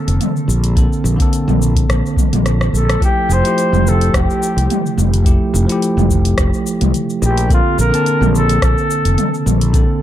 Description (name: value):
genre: sunset chillout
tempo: 107 BPM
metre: 4/4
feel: swing 54% on 16ths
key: F major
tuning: A4 = 440 Hz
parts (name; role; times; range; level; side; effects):
- bell-like tine electric piano; accompaniment; 0.0-10.0 s; D3 to A5; -19 LUFS; equal; auto-pan, tape echo
- fretless electric bass; bass; 0.1-9.8 s; F1 to C2; -15 LUFS; equal; wide subtle chorus
- deep house drum kit; drums; 0.1-9.9 s; hi-hat, rim click, shaker, toms; -21 LUFS; equal; none
- electronic kick drum; drums; 0.8-9.9 s; none; -16 LUFS; equal; overdrive
- mellow flugelhorn; melody; 2.8-9.4 s; F4 to C5; -20 LUFS; left 1 dB; tape echo
room: light reverb, digital ambience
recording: dark, warm production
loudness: -12 LUFS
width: side -12 dB against mid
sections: 0.0-3.0 A section; 3.0-10.0 B section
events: drum fill 2.5-3.0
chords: 0.0 Bbmaj9; 3.0 Fmaj9; 7.5 Bbmaj9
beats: 0.21 | 0.77 1.33 1.89 2.45 | 3.01 3.57 4.13 4.69 | 5.25 5.81 6.38 6.94 | 7.50 8.06 8.62 9.18 | 9.74